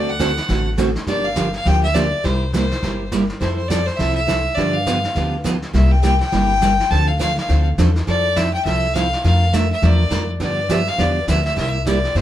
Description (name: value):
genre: country, western swing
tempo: 206 BPM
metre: 4/4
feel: swing 60% on 8ths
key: F major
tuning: A4 = 440 Hz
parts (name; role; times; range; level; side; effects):
- clear fiddle; melody; 0.0-12.2 s; C5 to A5; -21 LUFS; left 2 dB; none
- picked steel-string acoustic guitar; accompaniment; 0.0-12.2 s; C3 to Bb4; -22 LUFS; right 3 dB; none
- upright bass; bass; 0.0-12.2 s; G1 to G2; -19 LUFS; left 1 dB; none
- vintage brush drum kit; drums; 0.2-12.2 s; brushed snare drum, hi-hat, kick drum, snare drum; -27 LUFS; equal; none
room: moderate studio reverb, RT60 0.7 s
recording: band playing live in one room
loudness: -16 LUFS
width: side -12 dB against mid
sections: 0.0-12.2 A section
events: none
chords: 0.0 D7; 1.1 Gm7; 2.2 C7; 3.4 Fmaj7; 4.6 G7; 5.7 C7; 6.9 Dm7; 8.1 Fmaj7; 9.2 Bbmaj7/F; 10.4 G7; 11.6 C7